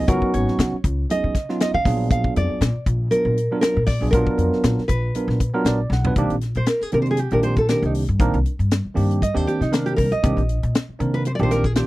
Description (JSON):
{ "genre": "electric jazz fusion", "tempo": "118 BPM", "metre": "4/4", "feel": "swing 54% on 16ths", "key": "C minor from 6.2 s", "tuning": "A4 = 441 Hz", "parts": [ { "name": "nylon-string guitar", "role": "melody", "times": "0.0-11.9 s", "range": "D4 to F5", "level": "-23 LUFS", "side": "right 1 dB", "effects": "none" }, { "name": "bright tine electric piano", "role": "accompaniment", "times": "0.0-11.9 s", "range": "Eb3 to Gb5", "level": "-23 LUFS", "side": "right 2 dB", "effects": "lush chorus" }, { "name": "upright bass", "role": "bass", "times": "0.0-11.8 s", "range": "Ab1 to Db3", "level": "-22 LUFS", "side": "equal", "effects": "none" }, { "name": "tight funk drum kit", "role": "drums", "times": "0.1-11.9 s", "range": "hi-hat, kick drum, snare drum, toms", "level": "-22 LUFS", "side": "left 1 dB", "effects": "none" } ], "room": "little or no reverb", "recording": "dry, close 1970s-style studio recording", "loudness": "-18 LUFS", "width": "side -18 dB against mid", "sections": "0.0-6.2 A section; 6.2-11.9 B section", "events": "tine electric piano fill 5.4-6.2; drum fill 5.9; nylon-string guitar solo 6.2-11.9", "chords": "0.0 Db7sus4; 1.9 Bb7b9b13; 6.2 Cm7" }